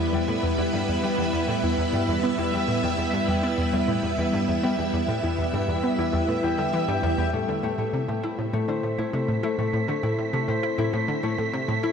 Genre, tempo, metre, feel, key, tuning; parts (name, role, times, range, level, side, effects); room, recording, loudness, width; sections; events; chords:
ambient; 100 BPM; 4/4; straight; A minor; A4 = 441 Hz
string machine, full ensemble; sustained chords; 0.0-11.9 s; G3 to E5; -26 LUFS; right 1 dB; ensemble chorus
concert harp; arpeggios; 0.0-11.9 s; G3 to G5; -28 LUFS; left 5 dB; auto-pan, ping-pong delay
analog pluck; riff; 0.0-11.9 s; E2 to E4; -27 LUFS; right 1 dB; chorus, ping-pong delay
wind-like tuned noise texture; texture; 8.7-11.9 s; B6; -33 LUFS; right 7 dB; built-in reverb
wet huge ambient reverb, RT60 7.9 s; -22 LUFS; side -6 dB against mid
0.0-7.3 A section; 7.3-11.9 B section
fade-in on string machine 7.3-11.9
0.0 Em; 7.3 Am